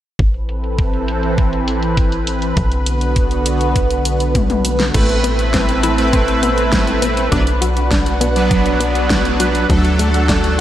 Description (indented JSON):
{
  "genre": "synthwave",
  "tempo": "101 BPM",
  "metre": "4/4",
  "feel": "straight",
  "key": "A dorian",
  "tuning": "A4 = 440 Hz",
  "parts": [
    { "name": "lush unison pad", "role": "sustained chords", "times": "0.5-10.6 s", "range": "D3 to F#5", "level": "-20 LUFS", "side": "equal", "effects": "chorus, phaser, sidechain pumping, shimmer reverb" },
    { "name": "tight sequencer bass", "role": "bass", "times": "0.2-10.6 s", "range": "A1 to D2", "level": "-19 LUFS", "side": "equal", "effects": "sidechain pumping" },
    { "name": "electronic kick drum", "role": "drums", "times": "0.2-10.4 s", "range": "none", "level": "-18 LUFS", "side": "equal", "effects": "small room ambience" },
    { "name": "pop drum kit", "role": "drums", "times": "0.2-10.6 s", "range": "crash cymbal, hi-hat, snare drum, toms", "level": "-22 LUFS", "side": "equal", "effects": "low-pass filter on hats, small room ambience, low-pass filter on toms, low-pass filter on snare, low-pass filter on cymbals" },
    { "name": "analog pluck", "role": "arpeggios", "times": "4.9-10.6 s", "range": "F#3 to F#4", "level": "-21 LUFS", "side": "left 2 dB", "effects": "chorus, digital delay, shimmer reverb, slapback echo" },
    { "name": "analog synth brass", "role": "stabs", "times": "4.9-10.6 s", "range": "F#3 to B4", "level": "-18 LUFS", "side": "right 2 dB", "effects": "chorus, digital delay, shimmer reverb" }
  ],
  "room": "wet lush hall reverb, RT60 1.8 s, digital ambience",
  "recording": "big arena sound",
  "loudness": "-13 LUFS",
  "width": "side -12 dB against mid",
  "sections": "0.2-4.9 A section; 4.9-10.6 B section",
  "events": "filter sweep on drum 0.2-4.9; filter sweep on analog synth bass 0.2-4.9; drum fill 4.3-4.9",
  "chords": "0.2 Amadd9; 2.6 Bm; 4.9 Amadd9; 7.3 Bm; 9.7 D",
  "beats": "| 0.19 0.79 1.38 1.97 | 2.57 3.16 3.76 4.35 | 4.94 5.54 6.13 6.73 | 7.32 7.92 8.51 9.10 | 9.70 10.29"
}